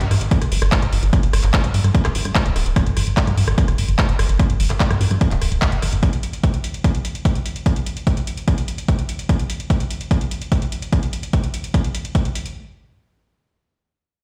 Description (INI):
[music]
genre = psychedelic trance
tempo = 147 BPM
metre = 4/4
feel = straight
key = unclear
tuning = A4 = 440 Hz
[part]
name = plucky analog bass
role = bass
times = 0.0-6.0 s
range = D1 to G2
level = -20 LUFS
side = equal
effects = none
[part]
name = techno drum kit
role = drums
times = 0.0-12.5 s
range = handclaps, hi-hat, rim click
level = -29 LUFS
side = equal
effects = none
[part]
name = electronic kick drum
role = drums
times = 0.3-12.2 s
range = none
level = -20 LUFS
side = equal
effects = none
[sound]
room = little or no reverb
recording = played on a big sound system in a bare room, large studio reverb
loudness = -19 LUFS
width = mono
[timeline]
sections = 0.0-12.6 A section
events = filter sweep on analog synth bass 0.0-6.0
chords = none